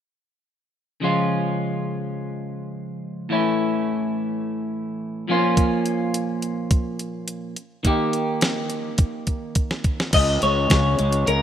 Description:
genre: indie rock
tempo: 105 BPM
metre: 4/4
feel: straight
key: Db lydian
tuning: A4 = 440 Hz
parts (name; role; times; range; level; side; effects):
- crunchy overdriven guitar; riff; 1.0-11.4 s; A2 to G4; -23 LUFS; equal; none
- clean 12-bit digital drum machine; drums; 5.6-11.4 s; crash cymbal, hi-hat, kick drum, snare drum; -21 LUFS; equal; none
- twelve-string electric guitar; melody; 10.1-11.4 s; Bb4 to Eb5; -20 LUFS; left 3 dB; none
- fuzz fingered electric bass; bass; 10.1-11.4 s; Db2; -21 LUFS; equal; overdrive
room: moderate lush hall reverb, RT60 2.5 s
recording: rough home demo mix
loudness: -20 LUFS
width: side -9 dB against mid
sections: 1.0-10.1 A section; 10.1-11.4 B section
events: drum fill 9.0-10.1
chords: 1.0 Db; 3.3 A; 5.3 Bbm; 7.9 Eb; 10.1 Db5

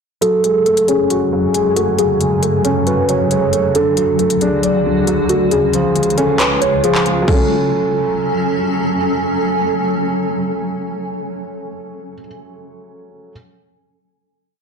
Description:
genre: hip hop, trap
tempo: 136 BPM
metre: 4/4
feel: half-time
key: F# harmonic minor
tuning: A4 = 439 Hz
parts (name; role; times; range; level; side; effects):
- muted felt-like synth keys; melody; 0.2-8.6 s; F#4 to C#5; -17 LUFS; equal; chorus, low-pass filter
- felt-muted upright piano; accompaniment; 0.2-13.3 s; C#3 to D5; -19 LUFS; right 1 dB; low-pass filter
- granular cloud pad; sustained chords; 0.6-11.6 s; C#2 to G#5; -19 LUFS; left 1 dB; built-in reverb, low-pass filter
- trap drum kit; drums; 0.2-7.4 s; crash cymbal, handclaps, hi-hat, kick drum; -19 LUFS; left 1 dB; none
room: moderate digital room reverb, RT60 1.1 s, digital ambience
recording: blown-out, overdriven recording, overdrive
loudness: -13 LUFS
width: side -6 dB against mid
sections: 0.2-7.3 breakdown; 7.3-10.8 final chord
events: filter sweep 0.2-7.3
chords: 0.2 F#madd9; 3.7 D; 5.5 C#; 7.3 F#madd9

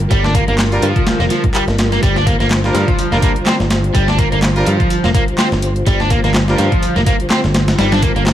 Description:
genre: breakbeat, breaks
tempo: 125 BPM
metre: 4/4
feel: swing 56% on 16ths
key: G minor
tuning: A4 = 440 Hz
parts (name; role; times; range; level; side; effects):
- mellow tonewheel organ; sustained chords; 0.0-8.3 s; D3 to C5; -22 LUFS; left 1 dB; chorus vibrato, fast rotary speaker, vintage 12-bit sampler grit, sidechain pumping
- picked electric bass; bass; 0.0-8.3 s; F1 to G2; -17 LUFS; equal; tube saturation
- house drum kit; drums; 0.0-8.3 s; handclaps, hi-hat; -26 LUFS; left 1 dB; overdrive
- crunchy overdriven guitar; riff; 0.1-8.2 s; F3 to D4; -18 LUFS; equal; dub echo
- breakbeat sampler-style drum kit; drums; 0.1-8.3 s; hi-hat, kick drum, snare drum; -16 LUFS; equal; overdrive
- bright horn section; stabs; 0.7-6.7 s; G3 to Bb4; -24 LUFS; right 1 dB; dub echo
room: little or no reverb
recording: vinyl crackle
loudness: -12 LUFS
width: side -11 dB against mid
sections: 0.0-8.3 A section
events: none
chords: 0.0 Gm7

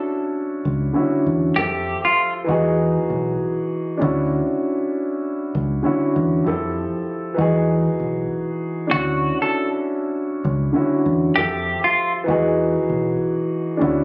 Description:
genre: hip hop, boom-bap hip-hop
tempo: 98 BPM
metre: 4/4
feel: swing 62% on 16ths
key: D major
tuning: A4 = 439 Hz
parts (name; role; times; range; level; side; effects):
- dark baby grand piano; accompaniment; 0.0-14.0 s; D3 to E5; -23 LUFS; equal; cassette tape, high-pass filter, low-pass filter
- deep dub fingered electric bass; bass; 0.7-14.0 s; B1 to F2; -25 LUFS; equal; none
- semi-hollow electric guitar; melody; 1.6-2.3, 8.9-12.1 s; F4 to A4; -22 LUFS; equal; high-pass filter, low-pass filter, slapback echo
room: moderate echo chamber reverb, RT60 1.4 s, studio ambience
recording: recorded on a phone in the room, club reverb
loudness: -21 LUFS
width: mono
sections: 0.0-8.9 A section; 8.9-14.0 B section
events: none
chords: 0.0 Dmaj9; 1.6 Fmaj9; 2.5 Emaj9; 4.0 Dmaj9; 6.5 Fmaj9; 7.4 Emaj9; 8.9 Dmaj9; 11.4 Fmaj9; 12.3 Emaj9

